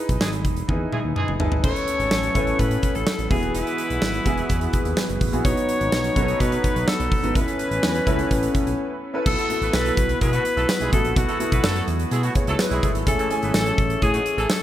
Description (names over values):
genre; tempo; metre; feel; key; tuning
1980s-style pop; 126 BPM; 4/4; straight; B mixolydian; A4 = 440 Hz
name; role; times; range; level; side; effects
warm concert grand piano; accompaniment; 0.0-14.6 s; A3 to A5; -26 LUFS; equal; lush chorus
smooth synth bass; bass; 0.1-14.5 s; D#1 to B2; -26 LUFS; equal; none
huge arena drum kit; drums; 0.1-14.6 s; crash cymbal, hi-hat, kick drum, snare drum, tambourine, toms; -23 LUFS; equal; none
warm horn section; stabs; 0.2-14.5 s; B2 to C#5; -31 LUFS; right 3 dB; digital delay
bright alto saxophone; melody; 1.6-14.6 s; E4 to C#5; -26 LUFS; left 2 dB; digital delay
mellow woodwind section; sustained chords; 1.6-14.6 s; E3 to B4; -33 LUFS; left 1 dB; none
room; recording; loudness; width
light reverb, studio ambience; bright 1980s-style digital production; -19 LUFS; side -12 dB against mid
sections
0.0-1.6 A section; 1.6-9.3 B section; 9.3-14.6 C section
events
drum fill 0.7-1.6; grand piano fill 0.7-1.6; break 8.8-9.3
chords
0.0 Emaj7; 1.6 Aadd9; 3.3 Eadd9; 5.4 B; 7.4 Aadd9; 9.3 B7sus4; 13.1 Amaj7